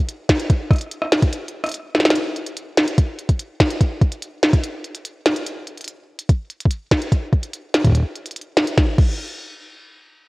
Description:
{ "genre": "IDM", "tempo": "145 BPM", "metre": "4/4", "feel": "straight", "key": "none", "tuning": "none", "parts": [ { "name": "glitchy drum kit", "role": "drums", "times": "0.1-9.1 s", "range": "crash cymbal, hi-hat, rim click, snare drum", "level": "-20 LUFS", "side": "equal", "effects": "overdrive" }, { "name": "electronic kick drum", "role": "drums", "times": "0.3-9.1 s", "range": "none", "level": "-15 LUFS", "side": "equal", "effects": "overdrive" } ], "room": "moderate lush hall reverb, RT60 1.8 s", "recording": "worn, warbling old tape, cassette tape, warbly pitch drift", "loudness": "-17 LUFS", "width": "side -22 dB against mid", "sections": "0.0-8.8 A section; 8.8-10.3 B section", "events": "none", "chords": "none" }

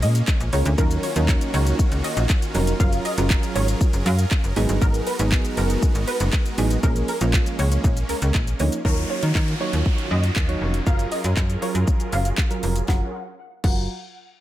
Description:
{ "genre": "dance-pop", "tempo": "119 BPM", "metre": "4/4", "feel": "straight", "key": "F# major", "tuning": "A4 = 440 Hz", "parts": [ { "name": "wide unison pluck", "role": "melody", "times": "0.0-13.9 s", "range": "A#4 to F#5", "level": "-30 LUFS", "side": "equal", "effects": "ensemble chorus, low-pass filter, dub echo" }, { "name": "supersaw chords", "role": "sustained chords", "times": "0.0-13.1 s", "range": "D#3 to A#4", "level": "-30 LUFS", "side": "right 1 dB", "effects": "sidechain pumping, low-pass filter" }, { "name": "slap-like FM bass", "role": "bass", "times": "0.0-13.9 s", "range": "E#1 to D#3", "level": "-22 LUFS", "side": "equal", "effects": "sidechain pumping" }, { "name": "house drum kit", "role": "drums", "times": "0.0-13.8 s", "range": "crash cymbal, handclaps, hi-hat, kick drum, shaker, snare drum", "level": "-22 LUFS", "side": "equal", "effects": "none" }, { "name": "soft electric-piano-like synth keys", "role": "accompaniment", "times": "0.5-13.9 s", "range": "E#3 to C#5", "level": "-28 LUFS", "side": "right 3 dB", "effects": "chorus, sidechain pumping, low-pass filter" }, { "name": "downlifter", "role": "sound effects", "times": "8.8-12.9 s", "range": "none", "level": "-34 LUFS", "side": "equal", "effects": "none" } ], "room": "digital ambience", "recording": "none", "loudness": "-19 LUFS", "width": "side -14 dB against mid", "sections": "0.0-8.8 A section; 8.8-12.9 B section; 12.9-14.4 C section", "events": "drop 0.0-8.8", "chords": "0.0 A#m7; 0.8 D#m7; 2.8 F#maj7; 4.6 G#m7; 6.8 A#m7; 8.8 D#m7; 10.9 F#maj7" }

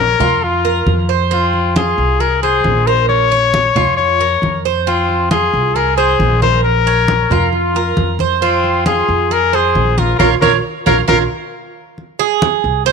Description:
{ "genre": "latin, Cuban son and guajira", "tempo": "135 BPM", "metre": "4/4", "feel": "straight", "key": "unclear", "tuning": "A4 = 440 Hz", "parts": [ { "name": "clear trumpet", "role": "melody", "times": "0.0-11.2 s", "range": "F4 to Db5", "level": "-15 LUFS", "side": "left 9 dB", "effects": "none" }, { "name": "Cuban tres", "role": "arpeggios", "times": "0.0-12.9 s", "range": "C4 to Db5", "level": "-17 LUFS", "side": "right 12 dB", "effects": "none" }, { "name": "upright bass", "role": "bass", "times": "0.0-12.9 s", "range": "Bb1 to F2", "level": "-18 LUFS", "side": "equal", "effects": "none" }, { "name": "congas", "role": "percussion", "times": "0.2-12.9 s", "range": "none", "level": "-21 LUFS", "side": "equal", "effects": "none" } ], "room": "light reverb, studio ambience", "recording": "1960s-style stereo with parts hard left and right", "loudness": "-12 LUFS", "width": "side -5 dB against mid", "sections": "0.0-12.0 A section", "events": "band accent 10.2-12.0", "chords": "0.0 Bbm; 1.3 Fm; 3.1 Bbm; 4.9 Fm; 6.6 Bbm; 8.4 Fm; 10.2 Bbm; 12.0 Ab" }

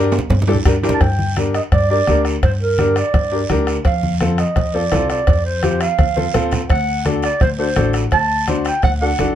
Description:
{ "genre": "latin, cumbia", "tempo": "169 BPM", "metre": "4/4", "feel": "straight", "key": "G minor", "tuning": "A4 = 439 Hz", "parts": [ { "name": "bright upright piano", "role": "accompaniment", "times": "0.0-9.3 s", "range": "C4 to C5", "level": "-20 LUFS", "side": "left 2 dB", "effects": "none" }, { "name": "upright bass", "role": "bass", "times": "0.0-9.3 s", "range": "A1 to G2", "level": "-20 LUFS", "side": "equal", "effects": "none" }, { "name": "guiro", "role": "percussion", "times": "0.1-9.3 s", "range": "none", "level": "-32 LUFS", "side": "right 6 dB", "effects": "none" }, { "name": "timbales and cowbell", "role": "percussion", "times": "0.1-9.3 s", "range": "none", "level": "-26 LUFS", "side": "right 6 dB", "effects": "none" }, { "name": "congas", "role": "percussion", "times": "0.2-9.3 s", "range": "none", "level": "-24 LUFS", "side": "right 1 dB", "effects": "none" }, { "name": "bombo", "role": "percussion", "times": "0.7-9.3 s", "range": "none", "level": "-20 LUFS", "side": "left 1 dB", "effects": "none" }, { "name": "breathy clarinet", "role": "second line", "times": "0.9-9.3 s", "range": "Bb4 to A5", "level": "-19 LUFS", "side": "right 2 dB", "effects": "none" } ], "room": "light reverb", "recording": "dark, warm production", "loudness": "-14 LUFS", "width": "side -10 dB against mid", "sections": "0.0-1.0 A section; 1.0-9.3 B section", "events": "drum fill 0.0-1.0, 6.0-6.7; clarinet solo 1.0-9.3", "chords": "0.0 Gm; 3.9 F; 6.7 D" }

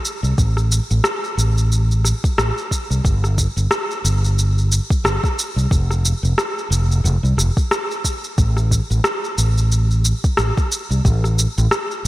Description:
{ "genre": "sunset chillout", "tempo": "90 BPM", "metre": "4/4", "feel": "swing 58% on 16ths", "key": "unclear", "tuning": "A4 = 439 Hz", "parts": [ { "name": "electronic shaker and rim click", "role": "drums", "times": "0.1-12.0 s", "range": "none", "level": "-22 LUFS", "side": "equal", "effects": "overdrive, gated reverb" }, { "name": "fretless electric bass", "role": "bass", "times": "0.2-12.1 s", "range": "F1 to C2", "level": "-16 LUFS", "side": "equal", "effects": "wide subtle chorus" }, { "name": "electronic kick drum", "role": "drums", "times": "0.4-11.2 s", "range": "none", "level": "-18 LUFS", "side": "equal", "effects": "overdrive" } ], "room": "light reverb", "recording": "bright 1980s-style digital production", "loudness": "-16 LUFS", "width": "side -17 dB against mid", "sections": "0.0-12.1 A section", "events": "none", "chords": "none" }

